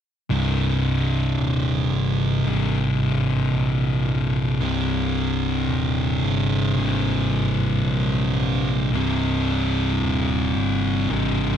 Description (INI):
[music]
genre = metal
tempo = 56 BPM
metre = 4/4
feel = straight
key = unclear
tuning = A4 = 441 Hz
[part]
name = thick fuzz guitar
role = riff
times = 0.3-11.6 s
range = C2 to C3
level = -24 LUFS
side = left 7 dB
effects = distortion
[part]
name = thick fuzz guitar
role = riff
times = 0.3-11.6 s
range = C2 to C3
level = -23 LUFS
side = right 5 dB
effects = distortion
[part]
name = overdriven picked electric bass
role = bass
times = 0.3-11.6 s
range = C1 to Bb1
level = -26 LUFS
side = equal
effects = none
[sound]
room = digital ambience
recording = none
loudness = -20 LUFS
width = side -9 dB against mid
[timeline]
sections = 0.3-11.6 A section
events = none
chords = 0.3 Cm